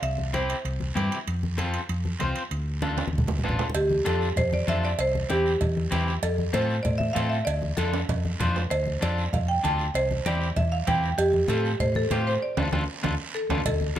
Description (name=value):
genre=latin, cumbia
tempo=194 BPM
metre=4/4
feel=straight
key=D minor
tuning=A4 = 440 Hz
part: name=marimba with hard mallets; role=melody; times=0.0-0.9, 3.7-14.0 s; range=G4 to A5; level=-27 LUFS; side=right 1 dB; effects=slapback echo
part: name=hollow-body short-scale fingered electric bass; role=bass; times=0.0-14.0 s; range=A1 to A2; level=-27 LUFS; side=equal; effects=none
part: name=congas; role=percussion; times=0.0-14.0 s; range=none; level=-31 LUFS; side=left 1 dB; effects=none
part: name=guiro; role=percussion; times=0.0-14.0 s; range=none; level=-40 LUFS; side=right 6 dB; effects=none
part: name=timbales and cowbell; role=percussion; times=0.0-13.8 s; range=none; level=-34 LUFS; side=right 7 dB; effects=none
part: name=electric guitar at the edge of break-up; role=accompaniment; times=0.3-14.0 s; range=C4 to C5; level=-32 LUFS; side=left 2 dB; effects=none
room=light reverb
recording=close, detailed microphones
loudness=-23 LUFS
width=side -11 dB against mid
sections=0.0-3.8 A section; 3.8-13.7 B section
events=drum fill 2.8-3.8, 7.9-8.7, 12.4-13.7; band accent 12.4-13.7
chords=0.0 C; 1.3 F; 2.5 Dm; 5.0 C; 6.2 F; 7.5 Dm; 9.9 C; 11.2 F; 12.4 Dm